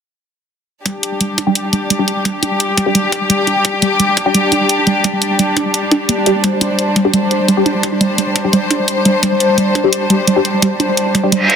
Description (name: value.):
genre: dark technical drum and bass.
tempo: 172 BPM.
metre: 4/4.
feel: straight.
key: unclear.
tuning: A4 = 441 Hz.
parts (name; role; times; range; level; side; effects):
dark studio string section; sustained chords; 0.9-11.6 s; G3 to C5; -16 LUFS; left 1 dB; sidechain pumping.
warbly dusty pluck; arpeggios; 0.9-11.4 s; G3 to D4; -17 LUFS; right 2 dB; chorus, sidechain pumping, tape echo.
electronic hi-hat; drums; 0.9-11.6 s; none; -16 LUFS; left 1 dB; none.
electronic kick drum; drums; 0.9-11.6 s; none; -20 LUFS; equal; high-pass filter on kick.
filtered dub chord stab; stabs; 1.5-11.3 s; G3 to G4; -19 LUFS; left 1 dB; phaser, lush chorus, tape echo.
reverse cymbal; sound effects; 11.4-11.6 s; none; -10 LUFS; right 2 dB; none.
room: moderate lush hall reverb, RT60 1.8 s.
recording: dense, heavily limited modern master.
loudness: -12 LUFS.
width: side -7 dB against mid.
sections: 0.9-11.6 A section.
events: reverse cymbal 11.4.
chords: 0.9 G5.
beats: | 0.86 1.21 1.55 1.90 | 2.25 2.60 2.95 3.30 | 3.65 4.00 4.34 4.69 | 5.04 5.39 5.74 6.09 | 6.44 6.79 7.14 7.49 | 7.83 8.18 8.53 8.88 | 9.23 9.58 9.93 10.28 | 10.62 10.97 11.32.